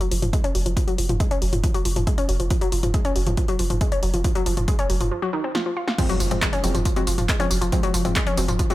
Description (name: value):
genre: driving peak-time techno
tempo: 138 BPM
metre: 4/4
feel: straight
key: F phrygian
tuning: A4 = 443 Hz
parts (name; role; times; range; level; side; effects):
- analog pluck; riff; 0.0-8.7 s; Eb3 to F4; -25 LUFS; left 1 dB; chorus, tube saturation, sidechain pumping, dub echo
- punchy analog drum machine; drums; 0.0-8.7 s; crash cymbal, handclaps, hi-hat, snare drum, tambourine, toms; -28 LUFS; equal; overdrive
- saturated sub bass; bass; 0.1-8.6 s; F1; -24 LUFS; equal; overdrive, sidechain pumping, low-pass filter
- electronic kick drum; drums; 0.3-8.7 s; none; -23 LUFS; equal; none
- filtered dub chord stab; stabs; 6.0-8.7 s; F3 to C4; -29 LUFS; left 1 dB; chorus, sidechain pumping, tape echo
- analog drone; drone; 6.6-8.7 s; F3; -32 LUFS; left 3 dB; chorus, sidechain pumping
- impact; sound effects; 6.0-7.7 s; none; -32 LUFS; right 1 dB; none
room: light reverb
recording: none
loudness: -20 LUFS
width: side -16 dB against mid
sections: 0.0-6.0 A section; 6.0-8.7 B section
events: filter sweep on synth arpeggio sound 0.0-6.0; break 5.1-6.0; drum fill 5.5-6.0; drop 6.0-8.7; impact 6.0-7.7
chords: 0.0 Fm